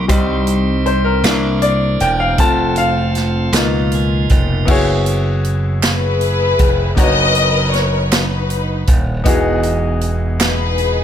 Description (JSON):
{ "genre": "slow gospel", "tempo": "52 BPM (dotted quarters)", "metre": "6/8", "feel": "straight", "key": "unclear", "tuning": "A4 = 440 Hz", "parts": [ { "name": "bright grand piano", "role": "accompaniment", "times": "0.0-11.0 s", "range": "E3 to A#5", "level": "-19 LUFS", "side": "left 2 dB", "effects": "none" }, { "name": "tonewheel organ", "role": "sustained chords", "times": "0.0-4.7 s", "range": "Cb3 to Ab5", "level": "-23 LUFS", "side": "right 4 dB", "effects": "overdrive, stopped rotary speaker" }, { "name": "glassy slap bass", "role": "bass", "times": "0.0-11.0 s", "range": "D#1 to Db2", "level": "-18 LUFS", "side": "equal", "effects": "none" }, { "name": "swinging big-band drum kit", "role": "drums", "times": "0.1-11.0 s", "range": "crash cymbal, hi-hat, kick drum, snare drum", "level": "-17 LUFS", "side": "right 1 dB", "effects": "none" }, { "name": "group handclap", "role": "percussion", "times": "1.2-10.8 s", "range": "none", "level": "-23 LUFS", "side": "right 6 dB", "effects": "none" }, { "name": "warm studio string section", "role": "melody", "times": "5.8-11.0 s", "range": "D#4 to D#5", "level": "-17 LUFS", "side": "left 4 dB", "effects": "none" } ], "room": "light reverb", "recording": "none", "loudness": "-13 LUFS", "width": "side -9 dB against mid", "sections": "0.0-4.7 A section; 4.7-11.0 B section", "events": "grand piano solo 0.0-4.7; tonewheel organ fill 3.5-4.7", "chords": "0.1 Cm; 1.2 C9; 2.4 F; 3.5 Db13; 4.7 F#9sus4; 7.0 Bmaj9/F#; 9.3 Emaj9" }